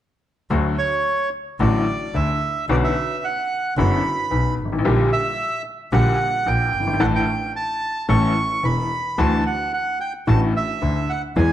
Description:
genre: tango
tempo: 110 BPM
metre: 4/4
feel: rubato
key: D major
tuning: A4 = 440 Hz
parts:
  - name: bright upright piano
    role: accompaniment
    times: 0.5-11.5 s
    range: E1 to A4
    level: -22 LUFS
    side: left 2 dB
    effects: none
  - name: clear double bass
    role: bass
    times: 0.5-11.5 s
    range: E1 to E2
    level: -22 LUFS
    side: right 1 dB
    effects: none
  - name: bandoneon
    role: melody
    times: 0.8-11.5 s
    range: C#5 to C#6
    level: -23 LUFS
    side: right 2 dB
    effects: none
room: wet recital hall reverb, RT60 1.4 s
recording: dark, warm production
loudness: -18 LUFS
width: side -12 dB against mid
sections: 0.5-11.5 A section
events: none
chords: 0.5 D; 2.7 Bmadd9; 4.8 Gm/Bb; 7.0 Asus4; 8.1 A; 9.2 Dadd9

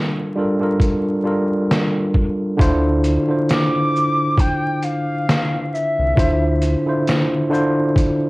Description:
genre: lo-fi hip hop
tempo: 67 BPM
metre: 4/4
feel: swing 58% on 16ths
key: D minor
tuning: A4 = 440 Hz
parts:
  - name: tine electric piano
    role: accompaniment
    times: 0.0-8.3 s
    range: D3 to C5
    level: -18 LUFS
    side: equal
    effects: fast stereo tremolo, cassette tape, low-pass filter
  - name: trip hop sampler-style drum kit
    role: drums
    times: 0.8-8.2 s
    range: hi-hat, kick drum, shaker, snare drum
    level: -19 LUFS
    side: equal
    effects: overdrive
  - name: round analog bass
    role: bass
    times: 2.6-6.8 s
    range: C2 to D2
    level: -19 LUFS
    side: equal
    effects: none
  - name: concert flute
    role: melody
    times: 3.5-6.6 s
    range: E5 to D6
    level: -22 LUFS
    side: left 1 dB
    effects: low-pass filter, analog delay
room: moderate studio reverb, RT60 0.5 s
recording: worn, warbling old tape, cassette tape, vinyl crackle, warbly pitch drift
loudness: -16 LUFS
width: side -21 dB against mid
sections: 0.0-2.6 A section; 2.6-8.3 B section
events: none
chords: 0.0 Gm9; 2.6 Dm9

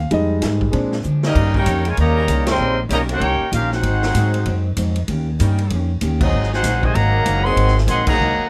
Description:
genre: jazz, big band swing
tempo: 193 BPM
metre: 4/4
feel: swing 61% on 8ths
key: unclear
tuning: A4 = 440 Hz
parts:
  - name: warm grand piano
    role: accompaniment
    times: 0.0-1.0 s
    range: G3 to Eb5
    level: -22 LUFS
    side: equal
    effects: none
  - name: upright bass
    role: bass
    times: 0.0-8.4 s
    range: Gb1 to D3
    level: -21 LUFS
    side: equal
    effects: none
  - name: picked steel-string acoustic guitar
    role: accompaniment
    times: 0.1-8.4 s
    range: F2 to G4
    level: -30 LUFS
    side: equal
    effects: none
  - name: swinging big-band drum kit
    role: drums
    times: 0.1-8.1 s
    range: crash cymbal, hi-hat, kick drum, ride cymbal, snare drum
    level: -27 LUFS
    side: equal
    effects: none
  - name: warm trombone section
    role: second line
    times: 1.2-8.5 s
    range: C3 to G4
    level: -26 LUFS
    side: equal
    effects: none
  - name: clear trumpet section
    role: melody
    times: 1.3-8.5 s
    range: C4 to C6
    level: -23 LUFS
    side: equal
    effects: none
  - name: clear saxophone section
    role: sustained chords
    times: 1.5-8.2 s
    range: Gb3 to Bb4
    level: -32 LUFS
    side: equal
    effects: none
room: little or no reverb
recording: none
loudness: -18 LUFS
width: mono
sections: 0.0-1.4 A section; 1.4-8.5 B section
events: grand piano solo 0.0-1.4; drum fill 1.0-1.4; band accent 2.4, 6.2, 8.0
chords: 0.1 Fm7; 0.7 Bb7; 1.4 Eb7; 3.8 Ab7; 5.1 Eb7; 6.3 Ab7

